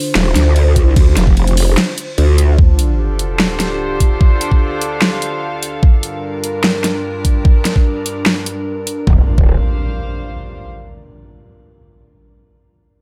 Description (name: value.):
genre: heavy wobble dubstep.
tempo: 148 BPM.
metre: 4/4.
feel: half-time.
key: D minor.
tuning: A4 = 439 Hz.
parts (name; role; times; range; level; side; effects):
evolving wavetable pad; sustained chords; 0.0-9.3 s; D2 to D5; -26 LUFS; equal; chorus, built-in reverb, sidechain pumping.
growl bass; bass; 0.2-2.6, 9.1-9.6 s; D1 to D2; -14 LUFS; equal; chorus, overdrive.
dubstep drum kit; drums; 0.2-9.0 s; hi-hat, ride cymbal, snare drum; -19 LUFS; equal; none.
electronic kick drum; drums; 0.8-9.5 s; none; -13 LUFS; equal; overdrive.
sub drop and impact; sound effects; 2.6-4.2, 9.1-10.7 s; none; -20 LUFS; equal; none.
rich chamber string section; texture; 2.6-10.7 s; G3 to F5; -27 LUFS; equal; sidechain pumping.
room: digital ambience.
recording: none.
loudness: -14 LUFS.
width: mono.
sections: 0.0-2.6 A section; 2.6-9.1 B section; 9.1-10.7 C section.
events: drop 0.0-2.6; kick drops out 2.2-2.6; fade-out on string section 2.6-9.1; impact 2.6-4.2.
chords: 0.0 Dm; 5.8 Gm; 9.1 Dm.